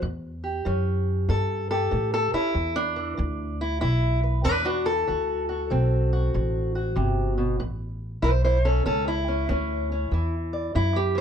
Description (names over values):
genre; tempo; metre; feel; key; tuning
acoustic country blues, solo or duo; 95 BPM; 4/4; swing 65% on 8ths; A mixolydian; A4 = 440 Hz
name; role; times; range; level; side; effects
fingerpicked steel-string acoustic guitar; melody; 0.0-11.2 s; E2 to D5; -25 LUFS; equal; plate reverb
upright bass; bass; 0.0-11.2 s; G1 to A2; -25 LUFS; equal; none
room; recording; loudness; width
light reverb; close, detailed microphones; -22 LUFS; side -8 dB against mid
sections
0.0-11.2 A section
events
steel-string acoustic guitar solo 0.0-11.2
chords
0.0 A7; 2.6 E5; 5.1 D7; 7.6 A; 10.1 E7(no3)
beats
| 0.02 0.65 1.29 1.92 | 2.55 3.19 3.82 4.45 | 5.08 5.71 6.34 6.97 | 7.61 8.24 8.87 9.50 | 10.13 10.76